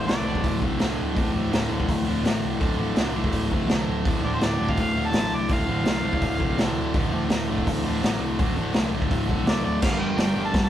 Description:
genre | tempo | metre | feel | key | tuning
garage rock duo or trio | 166 BPM | 4/4 | straight | D minor | A4 = 440 Hz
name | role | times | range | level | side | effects
mellow harmonica | melody | 0.0-0.6, 4.2-6.6, 9.5-10.7 s | C5 to A5 | -29 LUFS | equal | overdrive
fuzz guitar | riff | 0.0-10.7 s | D2 to G3 | -25 LUFS | equal | distortion
picked electric bass | bass | 0.0-10.7 s | D1 to D2 | -31 LUFS | equal | overdrive
raw garage drum kit | drums | 0.1-10.6 s | crash cymbal, hi-hat, kick drum, snare drum | -25 LUFS | equal | none
room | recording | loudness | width
moderate studio reverb, RT60 0.6 s | rough rehearsal-room recording | -21 LUFS | side -11 dB against mid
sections
0.0-9.8 A section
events
none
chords
0.0 D5; 9.8 G5

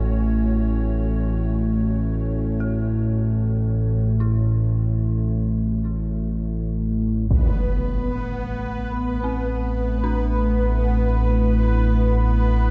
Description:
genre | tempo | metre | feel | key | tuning
dark ambient drone | free time | none | none | unclear | A4 = 441 Hz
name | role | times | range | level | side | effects
dark analog pad | sustained chords | 0.0-12.7 s | A3 to C#5 | -33 LUFS | equal | chorus
dark detuned synth bell | arpeggios | 0.0-12.7 s | C4 to A4 | -40 LUFS | equal | chorus, delay
analog drone | drone | 0.0-12.7 s | A1 to A2 | -23 LUFS | equal | chorus
impact | percussion | 7.3-7.5 s | none | -27 LUFS | equal | low-pass filter on sfx
bubbling stepped-filter texture | texture | 7.3-12.7 s | B3 to B4 | -30 LUFS | equal | chorus, built-in reverb
room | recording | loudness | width
moderate cathedral reverb, RT60 6.0 s | nothing above 7.8 kHz | -22 LUFS | mono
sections
0.0-7.3 A section; 7.3-12.7 B section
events
fade-out on analog synth pad 0.0-7.3; filter sweep on synth drone 7.3-12.7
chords
0.0 F#m; 7.3 Amadd9

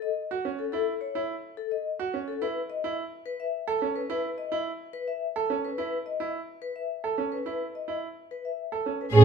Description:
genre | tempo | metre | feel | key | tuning
classical, minimalist pattern music | 107 BPM | 3/4 | straight | unclear | A4 = 440 Hz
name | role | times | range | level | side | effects
vibraphone with medium mallets | melody | 0.0-9.2 s | A4 to E5 | -32 LUFS | left 8 dB | none
bright grand piano | arpeggios | 0.3-9.0 s | C#4 to A4 | -31 LUFS | right 6 dB | none
clear French horn | second line | 9.1-9.2 s | G#4 | -15 LUFS | right 4 dB | none
warm double bass | bass | 9.1-9.2 s | A2 | -14 LUFS | right 3 dB | none
clear symphonic string section | sustained chords | 9.2 s | C#4 to G#4 | -20 LUFS | left 4 dB | none
room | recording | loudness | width
moderate large studio reverb, RT60 1.4 s | minimal, uncompressed stereo recording | -29 LUFS | side -6 dB against mid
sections
0.0-9.1 A section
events
none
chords
0.0 F#m7; 2.4 Aadd9

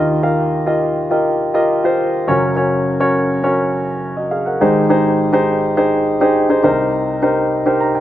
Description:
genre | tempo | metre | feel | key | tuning
pop | 103 BPM | 4/4 | straight | unclear | A4 = 437 Hz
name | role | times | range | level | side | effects
warm concert grand piano | solo | 0.0-8.0 s | Gb1 to Bb5 | -13 LUFS | equal | slapback echo
room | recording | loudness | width
little or no reverb | recorded outdoors, with no room sound, nothing above 7.8 kHz | -13 LUFS | side -12 dB against mid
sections
0.0-8.0 A section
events
grand piano fill 7.5-8.0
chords
0.0 Ebadd9; 2.3 Gb; 4.6 Abmaj7; 6.7 Cm7

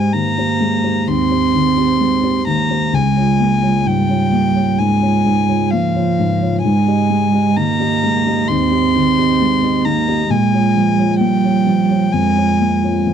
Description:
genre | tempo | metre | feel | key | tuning
neoclassical piano and strings | 65 BPM | 4/4 | rubato | Ab major | A4 = 436 Hz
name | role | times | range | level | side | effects
dark violin | melody | 0.0-13.1 s | F5 to C6 | -20 LUFS | left 4 dB | none
dark cello | second line | 0.0-13.0 s | F3 to C4 | -16 LUFS | right 7 dB | none
dark concert grand piano | accompaniment | 0.0-13.1 s | Db2 to Eb5 | -18 LUFS | left 5 dB | none
room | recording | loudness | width
small room ambience | dry, close 1970s-style studio recording | -13 LUFS | side -8 dB against mid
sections
0.0-13.1 A section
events
none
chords
0.0 Abmaj7; 2.9 Db6; 6.6 Abmaj7; 10.3 Bbm

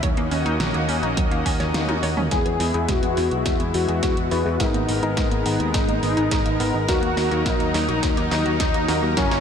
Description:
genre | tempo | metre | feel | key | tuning
synthwave | 105 BPM | 4/4 | straight | unclear | A4 = 443 Hz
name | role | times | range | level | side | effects
lush unison pad | sustained chords | 0.0-9.4 s | D#3 to D#5 | -27 LUFS | equal | chorus, sidechain pumping
analog pluck | arpeggios | 0.0-9.4 s | F#3 to C#5 | -29 LUFS | right 3 dB | chorus, tape echo
picked electric bass | bass | 0.0-9.4 s | E1 to G#2 | -26 LUFS | equal | tube saturation, sidechain pumping
electronic kick drum | drums | 0.0-9.3 s | none | -25 LUFS | equal | none
pop drum kit | drums | 0.0-9.4 s | hi-hat, snare drum, toms | -29 LUFS | equal | high-pass filter on hats, high-pass filter on snare, high-pass filter on toms, gated reverb
wide unison lead | melody | 2.3-9.4 s | C#4 to G#4 | -24 LUFS | left 1 dB | lush chorus, tape echo
bright tine electric piano | stabs | 2.3-9.4 s | A#3 to B4 | -28 LUFS | left 5 dB | low-pass filter, tape echo
room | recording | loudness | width
moderate lush hall reverb, RT60 2.7 s | none | -19 LUFS | side -7 dB against mid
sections
0.0-2.3 A section; 2.3-9.4 B section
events
drum fill 1.7-2.3, 2.3-9.4; filter sweep on synth arpeggio sound 2.3-9.4; filter sweep on tine electric piano 2.3-9.4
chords
0.0 D#m7; 2.3 E; 4.6 G#madd9; 6.9 D#m

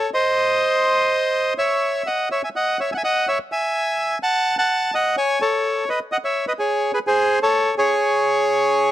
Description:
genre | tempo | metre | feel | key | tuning
tango | 126 BPM | 4/4 | rubato | C# minor | A4 = 440 Hz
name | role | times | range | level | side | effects
bandoneon | solo | 0.0-8.9 s | G#4 to A5 | -17 LUFS | equal | none
room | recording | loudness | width
studio reverb | dry, close 1970s-style studio recording | -18 LUFS | side -13 dB against mid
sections
0.0-8.9 A section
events
none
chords
0.4 Cdim; 2.3 C#m; 4.2 F#m; 6.1 G#sus4; 7.0 G#add11; 8.0 N.C.

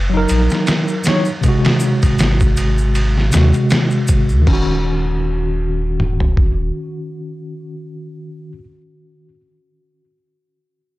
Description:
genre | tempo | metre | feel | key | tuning
trip hop | 79 BPM | 4/4 | swing 56% on 16ths | Eb minor | A4 = 439 Hz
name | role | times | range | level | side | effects
warm sub bass | bass | 0.0-6.7 s | Eb1 to Eb2 | -17 LUFS | equal | tube saturation
tine electric piano | accompaniment | 0.1-8.6 s | C3 to Db5 | -19 LUFS | equal | medium stereo tremolo, low-pass filter, tape echo
trip hop sampler-style drum kit | drums | 0.3-6.6 s | crash cymbal, kick drum, ride cymbal, snare drum, toms | -17 LUFS | equal | overdrive, studio reverb
egg shaker | percussion | 0.3-4.4 s | none | -31 LUFS | left 2 dB | none
room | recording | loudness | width
little or no reverb | dry, gritty hardware recording, cassette tape | -13 LUFS | side -18 dB against mid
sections
0.0-4.5 A section; 4.5-7.5 B section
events
filter sweep on tine electric piano 0.0-4.5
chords
0.0 Gb6; 1.4 Ab7; 4.5 Ebm7

